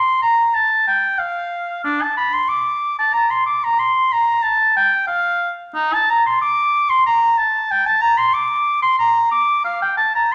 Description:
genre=classical, baroque-style fantasia for unaccompanied oboe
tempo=92 BPM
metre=3/4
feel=rubato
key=F major, Bb major from 5.7 s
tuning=A4 = 437 Hz
part: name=warm oboe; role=solo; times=0.0-10.3 s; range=D4 to D6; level=-17 LUFS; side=equal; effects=none
room=wet stone room reverb, RT60 1.3 s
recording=vinyl crackle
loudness=-17 LUFS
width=mono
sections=0.0-10.3 A section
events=none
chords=none

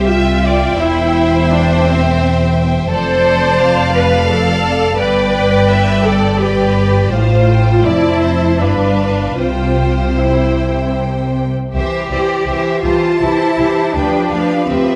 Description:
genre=classical, slow romantic movement for string orchestra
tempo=74-88 BPM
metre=3/4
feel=rubato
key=C major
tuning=A4 = 441 Hz
part: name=clear symphonic violin section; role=melody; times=0.0-15.0 s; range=A4 to F5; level=-23 LUFS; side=equal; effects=none
part: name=rich symphonic violin section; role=second line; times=0.0-15.0 s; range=B4 to A5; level=-23 LUFS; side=equal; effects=none
part: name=warm symphonic viola section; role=accompaniment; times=0.0-15.0 s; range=E3 to C5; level=-19 LUFS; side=equal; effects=none
part: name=rich symphonic cello section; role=bass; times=0.0-15.0 s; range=C2 to G4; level=-20 LUFS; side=equal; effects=none
part: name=rich symphonic double bass section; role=bass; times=0.0-14.8 s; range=E1 to D2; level=-20 LUFS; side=equal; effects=none
room=moderate scoring stage reverb, RT60 1.8 s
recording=vinyl crackle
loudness=-14 LUFS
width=mono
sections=0.0-11.7 A section; 11.7-15.0 A section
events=none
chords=0.0 C; 0.8 C/E; 2.9 Dm7/F; 5.0 G; 7.1 F/A; 7.9 F; 8.6 G7; 9.4 C; 14.0 G7

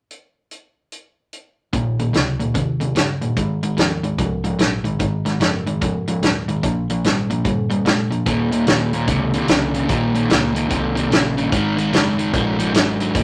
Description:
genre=electric blues shuffle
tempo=147 BPM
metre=4/4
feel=swing 63% on 8ths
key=unclear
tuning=A4 = 440 Hz
part: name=natural country drum kit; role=drums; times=0.1-13.2 s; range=hi-hat, kick drum, snare drum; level=-22 LUFS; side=equal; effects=none
part: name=overdriven semi-hollow guitar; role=riff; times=1.7-13.2 s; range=Eb2 to Ab3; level=-22 LUFS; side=equal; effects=none
part: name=vintage muted fingered electric bass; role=bass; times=1.7-13.2 s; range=Eb1 to Ab2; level=-30 LUFS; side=equal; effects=none
room=moderate small room reverb, RT60 0.6 s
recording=none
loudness=-19 LUFS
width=mono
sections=0.1-1.7 A section; 1.7-8.3 B section; 8.3-13.2 C section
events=none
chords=0.1 N.C.; 1.7 Eb7; 3.4 Ab7(no3); 6.6 Bb5; 8.3 Eb5; 11.5 Absus2

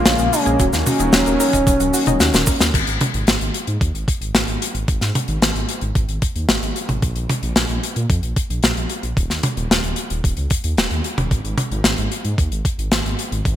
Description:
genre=synthwave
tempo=112 BPM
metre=4/4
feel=straight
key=unclear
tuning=A4 = 441 Hz
part: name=expressive synth lead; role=melody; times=0.0-2.6 s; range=C#4 to E#4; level=-19 LUFS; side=equal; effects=chorus, digital delay
part: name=warm analog pad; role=sustained chords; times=0.0-2.7 s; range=C#3 to A#3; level=-26 LUFS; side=left 1 dB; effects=chorus, sidechain pumping
part: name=analog pluck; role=arpeggios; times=0.0-2.7 s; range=F#3 to D#5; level=-26 LUFS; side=left 3 dB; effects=chorus, digital delay
part: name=dark detuned saw bass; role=bass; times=0.0-13.6 s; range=D#1 to A#2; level=-23 LUFS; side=equal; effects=none
part: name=modern studio drum kit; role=drums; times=0.1-13.6 s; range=cabasa, crash cymbal, hi-hat, snare drum, toms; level=-19 LUFS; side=left 1 dB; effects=gated reverb
part: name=electronic kick drum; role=drums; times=0.6-13.6 s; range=none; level=-20 LUFS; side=equal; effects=overdrive
room=light reverb, small room ambience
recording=bright 1980s-style digital production, faint mains hum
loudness=-16 LUFS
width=side -11 dB against mid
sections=0.0-2.7 A section; 2.7-13.6 B section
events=drum fill 2.2-2.7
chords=0.0 A#m7; 0.6 D#m; 2.7 G#5; 7.0 A#5; 9.2 N.C.; 11.3 G#5

